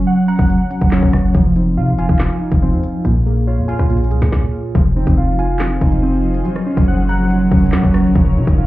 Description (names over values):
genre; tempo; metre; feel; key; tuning
hip hop, drill; 141 BPM; 4/4; half-time; F phrygian; A4 = 441 Hz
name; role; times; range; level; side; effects
warbly lo-fi synth keys; accompaniment; 0.0-8.7 s; Bb2 to Gb5; -18 LUFS; equal; chorus
mellow tine electric piano; arpeggios; 0.0-8.7 s; F3 to Bb5; -19 LUFS; right 1 dB; medium stereo tremolo, tape echo
hard-hitting 808-style bass; bass; 0.0-8.7 s; F1 to C3; -17 LUFS; equal; none
drill drum kit; drums; 0.3-8.6 s; handclaps, hi-hat, kick drum, rim click, snare drum; -16 LUFS; equal; none
granular cloud pad; sustained chords; 5.8-8.7 s; F3 to Db5; -25 LUFS; equal; built-in reverb
room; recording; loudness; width
little or no reverb; heard muffled through a wall, club reverb, EQ; -12 LUFS; side -16 dB against mid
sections
0.0-4.8 A section; 4.8-8.7 B section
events
stop 4.3-4.8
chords
0.0 Gb; 1.3 Fm7; 3.0 Bbm7; 4.8 Fm7; 6.5 Gb; 8.2 Fm7